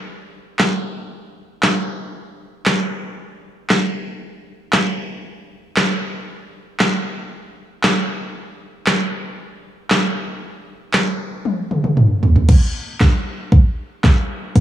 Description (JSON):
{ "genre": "pop", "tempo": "116 BPM", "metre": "4/4", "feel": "straight", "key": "none", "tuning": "none", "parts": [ { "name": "deep house drum kit", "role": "drums", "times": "0.6-14.6 s", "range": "crash cymbal, handclaps, hi-hat, kick drum, snare drum, toms", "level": "-16 LUFS", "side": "equal", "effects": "none" } ], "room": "wet plate reverb, RT60 2.1 s", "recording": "dreamy mix soaked in reverb", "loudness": "-16 LUFS", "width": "side -12 dB against mid", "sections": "0.0-12.5 A section; 12.5-14.6 B section", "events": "drum fill 11.5-12.5", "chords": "none", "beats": "| 0.07 0.59 1.11 1.62 | 2.14 2.66 3.18 3.69 | 4.21 4.73 5.25 5.76 | 6.28 6.80 7.31 7.83 | 8.35 8.87 9.38 9.90 | 10.42 10.94 11.45 11.97 | 12.49 13.00 13.52 14.04 | 14.56" }